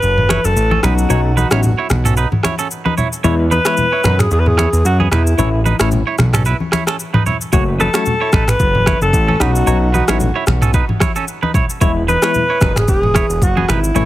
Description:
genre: afrobeats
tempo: 112 BPM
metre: 4/4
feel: swing 55% on 16ths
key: unclear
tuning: A4 = 439 Hz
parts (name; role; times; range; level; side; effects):
- breathy alto saxophone; melody; 0.0-14.1 s; E4 to B4; -18 LUFS; equal; tape echo
- fat analog bass; bass; 0.0-14.1 s; E1 to F#2; -16 LUFS; equal; none
- afro-pop drum kit; drums; 0.0-14.1 s; finger snaps, kick drum, rim click, shaker, toms; -17 LUFS; equal; none
- congas; percussion; 0.2-14.1 s; none; -22 LUFS; left 2 dB; none
- twangy electric guitar; riff; 0.3-14.1 s; B3 to C#5; -22 LUFS; right 7 dB; tape echo
- tine electric piano; accompaniment; 0.8-14.1 s; E3 to F#4; -21 LUFS; moving between left 7 dB and equal; auto-pan
room: little or no reverb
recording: heavily compressed radio sound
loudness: -12 LUFS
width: side -15 dB against mid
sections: 0.0-14.1 A section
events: break 0.0-7.5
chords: 0.0 F#m; 0.8 Badd9; 3.2 E; 5.4 A; 7.5 F#m; 9.4 Badd9; 11.8 E

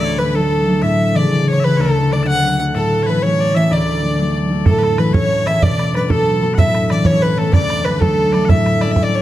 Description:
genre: celtic folk, Celtic jig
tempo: 125 BPM (dotted quarters)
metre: 6/8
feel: straight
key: D major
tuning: A4 = 440 Hz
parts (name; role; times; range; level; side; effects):
- rich fiddle; melody; 0.0-9.2 s; A4 to F#5; -18 LUFS; right 1 dB; none
- loud bright bagpipes; second line; 0.0-9.2 s; A4 to A5; -25 LUFS; left 6 dB; none
- concert harp; accompaniment; 0.0-9.2 s; D2 to D4; -16 LUFS; left 1 dB; none
- bodhran; percussion; 4.7-9.0 s; none; -17 LUFS; right 2 dB; none
room: moderate recital hall reverb, RT60 1.4 s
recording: dark, warm production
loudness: -13 LUFS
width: side -14 dB against mid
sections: 0.0-4.7 A section; 4.7-9.2 A section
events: none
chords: 0.0 D; 0.8 A; 1.8 D; 2.7 A; 3.7 D; 4.7 A; 5.6 Bm; 6.6 A; 7.5 D; 8.5 A7

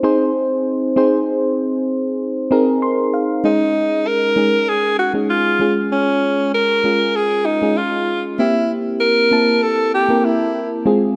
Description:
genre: pop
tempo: 97 BPM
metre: 4/4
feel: straight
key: unclear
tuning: A4 = 442 Hz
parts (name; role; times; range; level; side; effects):
- mellow FM electric piano; accompaniment; 0.0-11.2 s; Ab3 to C6; -20 LUFS; equal; chorus
- bright alto saxophone; melody; 3.4-10.7 s; Db4 to Bb4; -19 LUFS; equal; delay
room: moderate lush hall reverb, RT60 2.4 s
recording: dark, warm production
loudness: -17 LUFS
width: mono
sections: 0.0-3.4 A section; 3.4-11.2 B section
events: FM electric piano fill 2.5-3.4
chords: 0.0 Ab; 3.4 Absus4; 5.6 Db; 8.4 C7

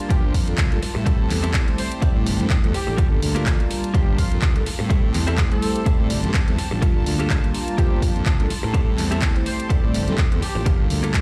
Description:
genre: filtered disco house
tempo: 125 BPM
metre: 4/4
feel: swing 56% on 16ths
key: G dorian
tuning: A4 = 440 Hz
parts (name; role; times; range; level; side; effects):
- mellow synth brass; accompaniment; 0.0-11.2 s; G3 to D5; -30 LUFS; equal; chorus, phaser, sidechain pumping
- warm symphonic violin section; sustained chords; 0.0-11.2 s; Bb3 to A5; -37 LUFS; equal; sidechain pumping
- house drum kit; drums; 0.0-11.2 s; handclaps, hi-hat; -31 LUFS; equal; sidechain pumping on hats, sidechain pumping on cymbals
- clear horn section; melody; 0.1-10.7 s; F4 to C5; -34 LUFS; equal; sidechain pumping, delay
- direct-recorded clean electric guitar; riff; 0.1-11.2 s; Bb3 to C5; -32 LUFS; equal; sidechain pumping
- fuzz fingered electric bass; bass; 0.1-11.2 s; G1 to A2; -27 LUFS; equal; overdrive, sidechain pumping
- electronic kick drum; drums; 0.1-11.2 s; none; -22 LUFS; equal; none
room: little or no reverb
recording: played on a big sound system in a bare room, large studio reverb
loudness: -20 LUFS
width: mono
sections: 0.0-11.2 A section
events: none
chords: 0.0 Gm9

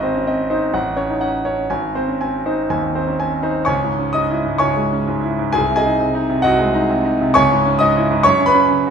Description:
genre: classical, virtuoso piano study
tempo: 118-135 BPM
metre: 4/4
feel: rubato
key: C# minor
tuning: A4 = 442 Hz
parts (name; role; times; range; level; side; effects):
- bright concert grand piano; solo; 0.0-8.9 s; G#1 to D#6; -15 LUFS; equal; none
room: wet recital hall reverb, RT60 1.3 s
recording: minimal, uncompressed stereo recording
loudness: -15 LUFS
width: side -7 dB against mid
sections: 0.0-3.7 A section; 3.7-8.9 B section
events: none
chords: 0.0 G#; 0.7 F#m/A; 1.7 G#; 3.7 C#m; 5.5 G#7/B#; 7.4 C#m; 8.3 F#5

